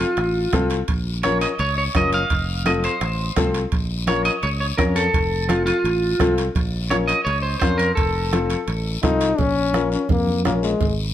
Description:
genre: latin, cumbia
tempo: 169 BPM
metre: 4/4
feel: straight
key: Bb harmonic minor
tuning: A4 = 445 Hz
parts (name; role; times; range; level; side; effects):
- electric guitar at the edge of break-up; melody; 0.0-9.0 s; F4 to F5; -22 LUFS; right 1 dB; spring reverb, slapback echo
- warm upright piano; accompaniment; 0.0-10.7 s; C4 to Bb4; -24 LUFS; left 5 dB; none
- fingered electric bass; bass; 0.0-11.1 s; F1 to F2; -24 LUFS; equal; none
- bombo; percussion; 0.2-11.0 s; none; -23 LUFS; right 2 dB; none
- congas; percussion; 0.2-11.0 s; none; -29 LUFS; right 2 dB; none
- guiro; percussion; 0.2-11.1 s; none; -34 LUFS; left 7 dB; none
- timbales and cowbell; percussion; 0.2-11.0 s; none; -33 LUFS; right 5 dB; none
- warm trombone; second line; 9.0-11.0 s; Ab3 to Eb4; -22 LUFS; left 4 dB; none
room: light reverb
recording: none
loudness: -18 LUFS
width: side -11 dB against mid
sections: 0.0-9.4 A section; 9.4-11.1 B section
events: trombone solo 9.4-11.1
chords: 0.0 F; 0.9 Bbm; 2.3 F; 3.7 Bbm; 5.1 F; 6.6 Bbm; 8.0 F7; 9.4 Bbm

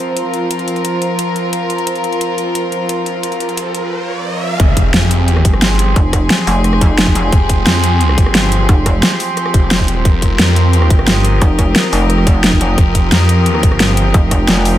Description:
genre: dark technical drum and bass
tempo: 176 BPM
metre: 4/4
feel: straight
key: F minor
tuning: A4 = 440 Hz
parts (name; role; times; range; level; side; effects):
- rich chamber string section; sustained chords; 0.0-14.8 s; F3 to Bb4; -19 LUFS; left 2 dB; sidechain pumping
- dubstep drum kit; drums; 0.0-14.7 s; hi-hat, rim click, snare drum; -16 LUFS; equal; overdrive, small room ambience
- airy breathy pad; texture; 0.0-14.8 s; F4 to Eb6; -23 LUFS; right 3 dB; chorus, sidechain pumping
- riser and impact; sound effects; 3.3-6.0 s; none; -22 LUFS; equal; none
- phased detuned saw bass; bass; 4.6-14.1 s; F1 to F2; -13 LUFS; equal; phaser, tube saturation, sidechain pumping
- electronic kick drum; drums; 4.6-14.4 s; none; -12 LUFS; equal; small room ambience
- pulsing pluck wobble bass; bass; 6.0-9.0, 11.4-14.8 s; F1; -14 LUFS; equal; chorus
room: digital ambience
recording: none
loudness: -11 LUFS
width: side -13 dB against mid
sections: 0.0-4.6 A section; 4.6-14.8 B section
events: riser 3.3-4.6; drop 4.6-14.8; impact 4.6-6.0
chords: 0.0 F5; 4.6 Fm

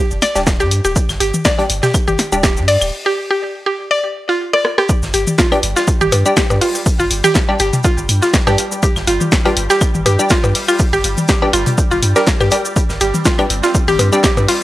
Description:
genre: minimal techno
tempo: 122 BPM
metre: 4/4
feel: swing 55% on 16ths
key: unclear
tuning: A4 = 440 Hz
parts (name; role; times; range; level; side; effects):
- punchy sub bass; bass; 0.1-14.5 s; D1 to G2; -18 LUFS; equal; sidechain pumping
- punchy analog drum machine; drums; 0.1-14.6 s; hi-hat, rim click, shaker, snare drum; -19 LUFS; equal; overdrive
- mallet-like synth pluck; riff; 0.2-14.5 s; F4 to D5; -17 LUFS; equal; chorus, sidechain pumping, analog delay
- huge arena drum kit; drums; 0.2-14.6 s; hi-hat, shaker, snare drum; -27 LUFS; equal; none
- electronic claves, toms and percussion blips; percussion; 0.2-14.5 s; none; -21 LUFS; left 2 dB; tape echo
- wavetable chord stab; stabs; 0.4-2.4, 5.5-14.2 s; G3 to G4; -20 LUFS; left 1 dB; tape echo
- electronic kick drum; drums; 0.5-14.3 s; none; -16 LUFS; equal; overdrive
- pulsing gated texture; texture; 5.3-14.6 s; G3 to G4; -27 LUFS; right 1 dB; chorus, built-in reverb, sidechain pumping
room: light reverb, digital ambience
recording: dry, gritty hardware recording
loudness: -12 LUFS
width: side -16 dB against mid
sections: 0.0-4.9 A section; 4.9-14.6 B section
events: break 2.9-4.9; drum fill 4.5-4.9; drop 4.9-14.6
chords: 0.0 G5

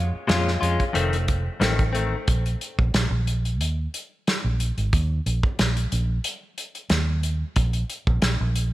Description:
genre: straight-eighth soul blues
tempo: 91 BPM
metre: 4/4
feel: swing 53% on 16ths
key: unclear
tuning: A4 = 438 Hz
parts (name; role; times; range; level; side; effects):
- vintage muted fingered electric bass; bass; 0.0-8.7 s; F1 to F2; -23 LUFS; right 1 dB; none
- direct-recorded clean electric guitar; stabs; 0.3-2.2 s; F2 to F4; -25 LUFS; left 4 dB; spring reverb, slapback echo
- warm soul drum kit; drums; 0.3-8.7 s; hi-hat, kick drum, snare drum; -24 LUFS; equal; none
room: light reverb, studio ambience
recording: none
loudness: -21 LUFS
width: side -16 dB against mid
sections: 0.0-2.3 A section; 2.3-8.7 B section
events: none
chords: 0.0 Bbm7; 1.0 F7; 2.3 N.C.; 4.9 Eb5; 7.6 N.C.

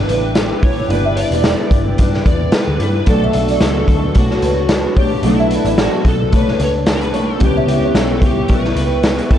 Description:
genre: indie pop, bedroom pop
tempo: 111 BPM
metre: 4/4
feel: swing 55% on 16ths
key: B minor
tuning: A4 = 440 Hz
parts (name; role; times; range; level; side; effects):
- overdriven slide guitar; melody; 0.0-9.4 s; E4 to D5; -23 LUFS; left 1 dB; ensemble chorus, analog delay
- fingerpicked steel-string acoustic guitar; accompaniment; 0.0-9.4 s; B2 to C#5; -20 LUFS; left 2 dB; wide subtle chorus, vibrato effect
- warbly lo-fi synth keys; accompaniment; 0.0-9.4 s; B3 to D5; -26 LUFS; right 5 dB; none
- hollow soft pad; sustained chords; 0.0-9.4 s; D4 to D6; -28 LUFS; equal; chorus
- vintage muted picked electric bass; bass; 0.0-9.2 s; E1 to G2; -20 LUFS; equal; none
- kalimba; second line; 0.1-9.2 s; B4 to E5; -24 LUFS; right 1 dB; analog chorus
- raw garage drum kit; drums; 0.1-9.4 s; hi-hat, kick drum, snare drum; -16 LUFS; equal; none
room: light reverb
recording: dry, gritty hardware recording, transformer saturation, nothing above 10.7 kHz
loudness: -12 LUFS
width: side -10 dB against mid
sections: 0.0-9.4 A section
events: none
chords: 0.0 Em7/G; 3.1 Bm9; 7.4 C#m7b5

